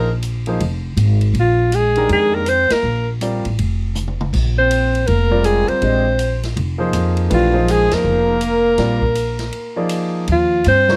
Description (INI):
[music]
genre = modal jazz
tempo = 161 BPM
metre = 4/4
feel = swing 64% on 8ths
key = Bb mixolydian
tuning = A4 = 440 Hz
[part]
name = breathy alto saxophone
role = melody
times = 0.0-11.0 s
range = F4 to C5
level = -19 LUFS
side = equal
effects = none
[part]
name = mellow trombone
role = second line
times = 0.0-11.0 s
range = F3 to C4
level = -26 LUFS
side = equal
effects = none
[part]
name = clear concert grand piano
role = accompaniment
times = 0.0-11.0 s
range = C3 to Eb5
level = -23 LUFS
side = equal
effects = none
[part]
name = upright bass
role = bass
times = 0.0-11.0 s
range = F1 to G2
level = -21 LUFS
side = equal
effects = none
[part]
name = swinging big-band drum kit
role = drums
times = 0.2-10.9 s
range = crash cymbal, hi-hat, kick drum, ride cymbal, snare drum, toms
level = -32 LUFS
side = equal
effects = none
[sound]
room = little or no reverb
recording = close, detailed microphones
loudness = -17 LUFS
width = mono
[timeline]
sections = 0.0-10.3 A section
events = band accent 2.7, 7.9; drum fill 4.0-4.3; break 9.5-10.3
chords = 0.0 Bb9sus4; 10.3 Ebsus2